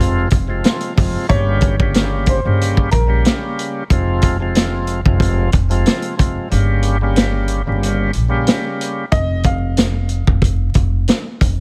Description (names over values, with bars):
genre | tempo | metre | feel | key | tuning
hip hop, boom-bap hip-hop | 92 BPM | 4/4 | swing 55% on 16ths | unclear | A4 = 442 Hz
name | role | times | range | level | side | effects
warm upright piano | melody | 0.0-3.2, 9.1-11.0 s | Bb4 to F5 | -26 LUFS | equal | high-pass filter, low-pass filter, delay
bright tonewheel organ | accompaniment | 0.0-9.1 s | C3 to G4 | -24 LUFS | equal | slow rotary speaker, high-pass filter, low-pass filter
upright bass | bass | 0.0-11.6 s | F1 to Bb1 | -20 LUFS | equal | none
vintage drum kit | drums | 0.0-11.6 s | hi-hat, kick drum, snare drum | -19 LUFS | equal | none
room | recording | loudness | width
studio reverb | vinyl crackle | -16 LUFS | mono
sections
0.0-9.1 A section; 9.1-11.6 A section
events
kick muted 6.5-9.1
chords
0.0 Fm; 1.3 Gdim; 3.9 Fm; 6.5 Gdim; 9.1 N.C.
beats
0.64 | 1.30 1.95 2.60 3.25 | 3.90 4.56 5.21 5.86 | 6.51 7.17 7.82 8.47 | 9.12 9.77 10.43 11.08